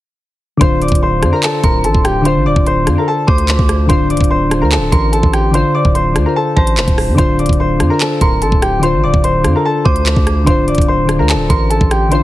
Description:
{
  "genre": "hip hop, drill",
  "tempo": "146 BPM",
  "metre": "4/4",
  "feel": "half-time",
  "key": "D minor",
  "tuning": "A4 = 437 Hz",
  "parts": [
    { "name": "clear concert grand piano", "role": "melody", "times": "0.6-12.2 s", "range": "G4 to D6", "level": "-17 LUFS", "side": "left 1 dB", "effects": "low-pass filter, ping-pong delay" },
    { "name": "soft electric-piano-like synth keys", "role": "accompaniment", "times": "0.6-12.2 s", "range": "D3 to C5", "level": "-16 LUFS", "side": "left 2 dB", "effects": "chorus, low-pass filter" },
    { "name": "long sustained 808-style bass", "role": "bass", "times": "0.6-12.2 s", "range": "C1 to F2", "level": "-16 LUFS", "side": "equal", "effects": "none" },
    { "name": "drill drum kit", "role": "drums", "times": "0.6-12.2 s", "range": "handclaps, hi-hat, kick drum, rim click", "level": "-15 LUFS", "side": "equal", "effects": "vintage 12-bit sampler grit" },
    { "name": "dark detuned synth bell", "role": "second line", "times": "1.6-12.1 s", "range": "A5 to D6", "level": "-24 LUFS", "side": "right 4 dB", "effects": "chorus, ping-pong delay" }
  ],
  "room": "little or no reverb",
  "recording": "heavily compressed radio sound, multiband compression",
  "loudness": "-10 LUFS",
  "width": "side -15 dB against mid",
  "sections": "0.6-12.2 A section",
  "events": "none",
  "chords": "0.6 Dm7",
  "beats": "| 0.61 1.02 1.43 1.84 | 2.25 2.66 3.08 3.49 | 3.90 4.31 4.72 5.13 | 5.54 5.95 6.36 6.77 | 7.18 7.59 8.01 8.42 | 8.83 9.24 9.65 10.06 | 10.47 10.88 11.29 11.71 | 12.12"
}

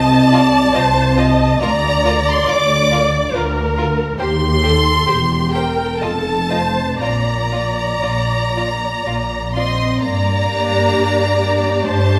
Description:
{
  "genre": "classical, slow romantic movement for string orchestra",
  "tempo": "58-71 BPM",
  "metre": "3/4",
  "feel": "rubato",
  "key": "Bb major",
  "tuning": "A4 = 440 Hz",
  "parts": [
    { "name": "rich studio violin section", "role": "melody", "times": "0.0-12.2 s", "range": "G5 to D6", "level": "-22 LUFS", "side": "equal", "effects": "none" },
    { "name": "warm studio viola section", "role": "accompaniment", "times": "0.0-12.2 s", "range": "D4 to Eb5", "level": "-22 LUFS", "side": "equal", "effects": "none" },
    { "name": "warm studio cello section", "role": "bass", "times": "0.0-12.2 s", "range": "D2 to C4", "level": "-23 LUFS", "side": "equal", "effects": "none" },
    { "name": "warm studio double bass section", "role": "bass", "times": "0.0-12.2 s", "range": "E1 to G2", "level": "-23 LUFS", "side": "equal", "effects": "none" },
    { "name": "rich studio violin section", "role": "second line", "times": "0.3-12.2 s", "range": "F4 to Eb5", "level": "-26 LUFS", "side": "equal", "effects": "none" }
  ],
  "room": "wet recital hall reverb, RT60 1.6 s",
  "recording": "none",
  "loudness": "-16 LUFS",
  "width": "mono",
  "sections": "0.0-10.0 A section; 10.0-12.2 B section",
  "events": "none",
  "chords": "0.0 F7/C (rootless); 1.6 Bb/D; 4.2 Cm/Eb; 5.1 C7/E; 6.0 F; 7.0 Bb; 10.0 Gm",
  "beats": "0.74 | 1.62 2.49 3.34 | 4.20 5.08 6.01 | 7.01 8.03 9.04 | 10.02 10.95 11.86"
}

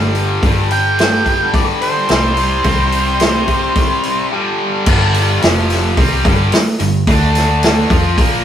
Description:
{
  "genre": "blues rock power trio and southern rock",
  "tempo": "108 BPM",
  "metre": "4/4",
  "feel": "straight",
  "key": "unclear",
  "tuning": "A4 = 441 Hz",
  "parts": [
    { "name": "tight distorted guitar", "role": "riff", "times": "0.0-8.4 s", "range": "F2 to F4", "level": "-16 LUFS", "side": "left 1 dB", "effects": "distortion" },
    { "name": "vintage muted fingered electric bass", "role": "bass", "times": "0.0-8.4 s", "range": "F1 to F2", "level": "-18 LUFS", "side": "equal", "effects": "none" },
    { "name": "vintage drum kit", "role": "drums", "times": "0.1-8.3 s", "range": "crash cymbal, hi-hat, kick drum, snare drum", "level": "-15 LUFS", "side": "equal", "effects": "none" },
    { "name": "octave-fuzz lead guitar", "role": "melody", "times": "0.7-4.3 s", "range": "C5 to G5", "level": "-17 LUFS", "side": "right 1 dB", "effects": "distortion" }
  ],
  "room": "moderate small room reverb, RT60 0.5 s",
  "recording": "rough rehearsal-room recording",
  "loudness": "-11 LUFS",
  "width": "side -10 dB against mid",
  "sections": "0.0-4.9 A section; 4.9-8.4 B section",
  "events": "break 4.3-4.9",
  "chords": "0.0 G5; 2.1 C5; 4.3 G5; 5.4 F5; 6.0 G5; 7.1 D5; 7.9 F5",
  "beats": "| 0.43 0.98 1.54 2.10 | 2.65 3.21 3.76 4.32 | 4.87 5.42 5.97 6.53 | 7.08 7.63 8.18"
}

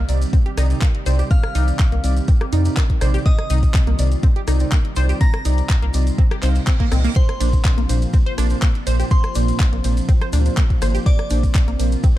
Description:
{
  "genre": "progressive house",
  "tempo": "123 BPM",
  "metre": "4/4",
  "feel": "straight",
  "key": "C minor",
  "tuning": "A4 = 440 Hz",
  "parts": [
    { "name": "evolving wavetable pad", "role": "sustained chords", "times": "0.0-12.2 s", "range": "C3 to G4", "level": "-30 LUFS", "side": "equal", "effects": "chorus, built-in reverb, sidechain pumping" },
    { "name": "deep mellow chord stab", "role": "stabs", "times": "0.0-11.9 s", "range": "Bb2 to F5", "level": "-27 LUFS", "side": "right 4 dB", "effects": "chorus, sidechain pumping" },
    { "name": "round analog bass", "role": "bass", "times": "0.0-12.0 s", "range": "Ab1 to F2", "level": "-18 LUFS", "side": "equal", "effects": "sidechain pumping" },
    { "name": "pop drum kit", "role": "drums", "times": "0.1-12.1 s", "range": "handclaps, hi-hat, ride cymbal, rim click", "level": "-30 LUFS", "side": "equal", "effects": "small room ambience" },
    { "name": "maracas", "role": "percussion", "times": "0.1-12.1 s", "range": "none", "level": "-38 LUFS", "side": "right 1 dB", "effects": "none" },
    { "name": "tight sequenced synth", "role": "arpeggios", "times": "0.3-12.1 s", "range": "Bb3 to C5", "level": "-29 LUFS", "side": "right 1 dB", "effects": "chorus, sidechain pumping, digital delay" },
    { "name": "electronic kick drum", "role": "drums", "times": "0.3-12.1 s", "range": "none", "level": "-15 LUFS", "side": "equal", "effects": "small room ambience" },
    { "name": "glassy synth bell", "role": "melody", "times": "1.3-11.7 s", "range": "C5 to Bb6", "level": "-32 LUFS", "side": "left 1 dB", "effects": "chorus, phaser, sidechain pumping, ping-pong delay" },
    { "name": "soft round pluck", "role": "second line", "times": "1.3-11.7 s", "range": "C6 to Bb6", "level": "-37 LUFS", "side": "right 1 dB", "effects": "none" },
    { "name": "reverse cymbal", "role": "sound effects", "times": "6.4-7.2 s", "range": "none", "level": "-35 LUFS", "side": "right 4 dB", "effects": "none" }
  ],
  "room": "digital ambience",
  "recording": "dark, warm production",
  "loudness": "-15 LUFS",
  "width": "side -15 dB against mid",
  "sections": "0.0-12.2 A section",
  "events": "reverse cymbal 6.4-7.2",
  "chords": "0.0 Cmadd9; 7.2 Bbadd9",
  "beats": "0.33 0.82 | 1.31 1.79 2.28 2.77 | 3.26 3.75 4.23 4.72 | 5.21 5.70 6.18 6.67 | 7.16 7.65 8.14 8.62 | 9.11 9.60 10.09 10.57 | 11.06 11.55 12.04"
}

